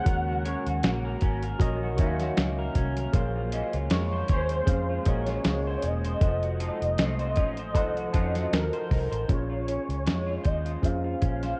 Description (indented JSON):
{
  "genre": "indie pop, bedroom pop",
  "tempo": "78 BPM",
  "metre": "4/4",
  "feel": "swing 55% on 16ths",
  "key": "Bb minor",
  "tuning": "A4 = 439 Hz",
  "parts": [
    { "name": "warm velvety synth lead", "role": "melody", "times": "0.0-11.6 s", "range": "Bb4 to Gb5", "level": "-34 LUFS", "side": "equal", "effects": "ensemble chorus, analog delay" },
    { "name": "electric guitar through a small old amp", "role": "accompaniment", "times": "0.0-11.6 s", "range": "Bb2 to C5", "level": "-38 LUFS", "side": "equal", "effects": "subtle chorus, warbly pitch drift" },
    { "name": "tine electric piano", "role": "accompaniment", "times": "0.0-11.6 s", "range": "Db4 to A5", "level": "-37 LUFS", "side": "equal", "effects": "overdrive, cassette tape" },
    { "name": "ethereal airy pad", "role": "sustained chords", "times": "0.0-9.3 s", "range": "Eb3 to Gb4", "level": "-42 LUFS", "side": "equal", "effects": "ensemble chorus, built-in reverb" },
    { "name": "vintage muted fingered electric bass", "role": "bass", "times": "0.1-11.5 s", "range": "E1 to F2", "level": "-33 LUFS", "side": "equal", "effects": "transformer saturation" },
    { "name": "dusty soul sampler-style drum kit", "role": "drums", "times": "0.1-11.6 s", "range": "hi-hat, kick drum, snare drum", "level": "-28 LUFS", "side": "equal", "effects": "none" },
    { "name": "electric guitar through a small old amp", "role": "second line", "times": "0.5-8.5 s", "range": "C4 to Eb5", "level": "-41 LUFS", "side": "equal", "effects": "analog chorus, analog delay" }
  ],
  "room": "light reverb",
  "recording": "worn, warbling old tape, cassette tape, warbly pitch drift",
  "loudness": "-27 LUFS",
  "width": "mono",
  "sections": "0.0-9.3 A section; 9.3-11.6 B section",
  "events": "none",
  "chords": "0.1 Ebm7; 3.1 Bbm9; 6.2 F7b9; 9.3 Bbm9"
}